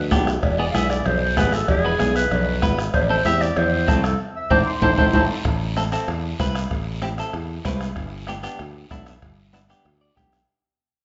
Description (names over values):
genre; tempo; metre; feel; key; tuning
latin, cumbia; 191 BPM; 4/4; straight; A minor; A4 = 440 Hz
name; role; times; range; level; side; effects
warm clarinet; melody; 0.0-5.2 s; G#4 to F5; -25 LUFS; equal; none
modern bright fingered electric bass; bass; 0.0-10.4 s; E1 to E2; -27 LUFS; equal; none
clean electric guitar; accompaniment; 0.1-10.5 s; B3 to G5; -30 LUFS; equal; none
bombo; percussion; 0.1-10.5 s; none; -29 LUFS; equal; none
congas; percussion; 0.1-10.3 s; none; -30 LUFS; equal; none
guiro; percussion; 0.1-10.5 s; none; -40 LUFS; equal; none
timbales and cowbell; percussion; 0.1-10.5 s; none; -31 LUFS; equal; none
mellow accordion; second line; 4.4-5.4 s; A4 to E5; -30 LUFS; equal; none
room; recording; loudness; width
wet large studio reverb, RT60 1.2 s; band playing live in one room, nothing above 7.7 kHz; -21 LUFS; mono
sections
0.0-5.4 A section; 5.4-10.5 B section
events
drum fill 4.2-5.4; band accent 4.2-5.4; fade-out 5.4-10.5; clean electric guitar fill 9.8-10.5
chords
0.4 E; 2.9 Am; 8.0 G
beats
0.12 | 0.43 0.74 1.06 1.37 | 1.69 2.00 2.31 2.63 | 2.94 3.25 3.57 3.88 | 4.19 4.51 4.82 5.13 | 5.45 5.76 6.08 6.39 | 6.70 7.02 7.33 7.65 | 7.96 8.28 8.59 8.90 | 9.22 9.53 9.85 10.16